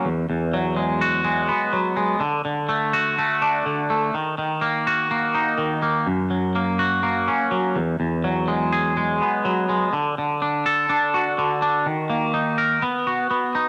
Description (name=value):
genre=rock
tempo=124 BPM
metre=4/4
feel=straight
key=unclear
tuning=A4 = 440 Hz
part: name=twangy electric guitar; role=solo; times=0.0-13.7 s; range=E2 to A#4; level=-22 LUFS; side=equal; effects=phaser
room=light reverb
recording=none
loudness=-22 LUFS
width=mono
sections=0.0-13.7 A section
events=none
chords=0.1 Eadd9; 2.2 D; 4.1 D#m; 6.1 F#; 7.8 Eadd9; 9.9 D; 11.9 D#5; 12.8 B